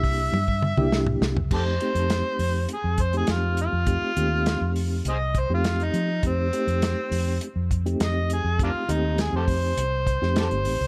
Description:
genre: straight-eighth soul blues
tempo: 102 BPM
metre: 4/4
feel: straight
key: F mixolydian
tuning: A4 = 441 Hz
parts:
  - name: overdriven harmonica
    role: melody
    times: 0.0-10.9 s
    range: Bb3 to E5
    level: -30 LUFS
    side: equal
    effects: none
  - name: mellow reed electric piano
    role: accompaniment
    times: 0.0-10.8 s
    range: A3 to G4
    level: -32 LUFS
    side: equal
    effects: fast tremolo
  - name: vintage muted fingered electric bass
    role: bass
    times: 0.0-10.9 s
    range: G1 to F3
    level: -28 LUFS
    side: equal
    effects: none
  - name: warm soul drum kit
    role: drums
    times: 0.0-10.8 s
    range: crash cymbal, hi-hat, kick drum, snare drum, toms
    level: -30 LUFS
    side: equal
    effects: none
room: little or no reverb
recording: none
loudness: -24 LUFS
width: mono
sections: 0.0-1.5 A section; 1.5-10.9 B section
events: harmonica solo 0.0-1.5; drum fill 0.3-1.5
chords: 0.0 C9; 1.5 F9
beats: 0.33 0.92 | 1.51 2.10 2.69 3.28 | 3.87 4.46 5.05 5.64 | 6.23 6.82 7.41 8.00 | 8.59 9.18 9.77 10.36

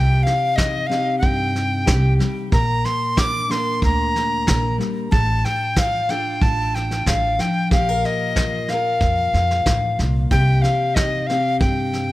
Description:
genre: acoustic folk duo or small band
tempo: 92 BPM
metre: 4/4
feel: straight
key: C dorian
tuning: A4 = 440 Hz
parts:
  - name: bright alto recorder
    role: melody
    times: 0.0-12.1 s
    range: Eb5 to D6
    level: -21 LUFS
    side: left 1 dB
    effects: tape echo
  - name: fingerpicked steel-string acoustic guitar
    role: accompaniment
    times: 0.0-12.1 s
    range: A2 to Bb4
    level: -25 LUFS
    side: left 2 dB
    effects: none
  - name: upright bass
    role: bass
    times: 0.0-12.1 s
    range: A1 to G2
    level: -21 LUFS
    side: equal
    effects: none
  - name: soft brush drum kit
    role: drums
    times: 0.3-12.0 s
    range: kick drum, snare drum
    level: -22 LUFS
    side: right 1 dB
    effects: none
room: light reverb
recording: none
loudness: -17 LUFS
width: side -16 dB against mid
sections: 0.0-12.1 A section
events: none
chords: 0.0 Cm; 2.5 Gm/Bb (rootless); 5.1 Dm/A; 7.7 Bb5; 10.3 Cm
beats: 0.58 1.23 1.88 | 2.53 3.17 3.82 4.47 | 5.12 5.77 6.42 7.07 | 7.71 8.36 9.01 9.66 | 10.31 10.96 11.60

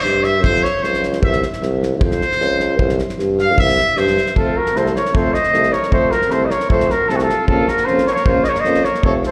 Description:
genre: balkan folk, Balkan brass band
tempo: 154 BPM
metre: 2/4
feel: straight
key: F phrygian dominant from 4.4 s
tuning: A4 = 440 Hz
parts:
  - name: bright trumpet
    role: second line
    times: 0.0-9.3 s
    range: Eb4 to F5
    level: -23 LUFS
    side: equal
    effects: slapback echo
  - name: clear tuba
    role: bass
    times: 0.0-9.2 s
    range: F1 to G2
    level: -22 LUFS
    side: equal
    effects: none
  - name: damped 70s drum kit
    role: percussion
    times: 0.0-9.3 s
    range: kick drum, snare drum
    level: -24 LUFS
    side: equal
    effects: none
  - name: mellow trumpet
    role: melody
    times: 4.4-9.3 s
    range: Gb4 to Eb5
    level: -19 LUFS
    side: equal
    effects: slapback echo
  - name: clear euphonium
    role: accompaniment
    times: 4.4-9.2 s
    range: C4 to Db4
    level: -29 LUFS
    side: equal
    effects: slapback echo
  - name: warm trombone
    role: accompaniment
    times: 4.4-9.2 s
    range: A3 to Bb3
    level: -27 LUFS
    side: equal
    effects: slapback echo
room: light reverb, studio reverb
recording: live gig heard through the venue's PA, recital hall reverb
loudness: -16 LUFS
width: mono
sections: 0.0-4.4 A section; 4.4-9.3 B section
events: trumpet solo 0.0-4.4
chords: 0.4 Dbmaj7; 1.2 C; 2.0 F5; 2.8 C5; 4.4 F; 7.5 Bbm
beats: 0.05 | 0.44 0.83 | 1.23 1.62 | 2.01 2.40 | 2.79 3.18 | 3.58 3.97 | 4.36 4.75 | 5.14 5.53 | 5.92 6.31 | 6.70 7.09 | 7.47 7.86 | 8.25 8.64 | 9.03

